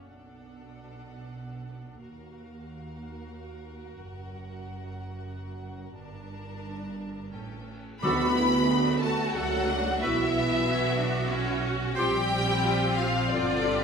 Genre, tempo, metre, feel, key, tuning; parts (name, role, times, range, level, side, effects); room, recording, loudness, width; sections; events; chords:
cinematic, emotional film score for orchestra; 91 BPM; 3/4; rubato; D major from 8.0 s; A4 = 444 Hz
rich studio violin section; melody; 0.0-13.8 s; D5 to B5; -34 LUFS; left 2 dB
rich studio violin section; second line; 0.0-13.8 s; A4 to B5; -36 LUFS; left 3 dB
clear studio viola section; accompaniment; 0.0-13.8 s; A3 to G4; -34 LUFS; right 1 dB
rich studio double bass section; bass; 0.0-13.8 s; F#1 to D#2; -35 LUFS; right 2 dB
rich symphonic cello section; bass; 0.0-13.8 s; D#2 to A4; -36 LUFS; right 3 dB
cymbal swell and tam-tam; percussion; 4.0-10.6 s; -41 LUFS; left 1 dB
clear oboe; second line; 8.0-12.2 s; A4 to C5; -35 LUFS; right 2 dB
mellow clarinet; second line; 8.0-12.2 s; F4 to F#4; -36 LUFS; left 1 dB
mellow hollow silver concert flute; second line; 8.0-12.3 s; D6 to E6; -38 LUFS; left 2 dB
mellow French horn section; sustained chords; 8.0-13.8 s; D3 to B3; -30 LUFS; equal
timpani; percussion; 8.0-9.0 s; D3; -35 LUFS; right 1 dB
wet recital hall reverb, RT60 1.6 s; minimal, uncompressed stereo recording; -24 LUFS; side -6 dB against mid
0.0-8.0 A section; 8.0-13.8 B section
band accent 8.0-8.7
0.0 Bm7; 2.0 D#madd9; 4.0 F#; 6.0 Gmadd9; 7.3 A7; 8.0 D; 10.0 Bsus4; 12.0 Bbadd9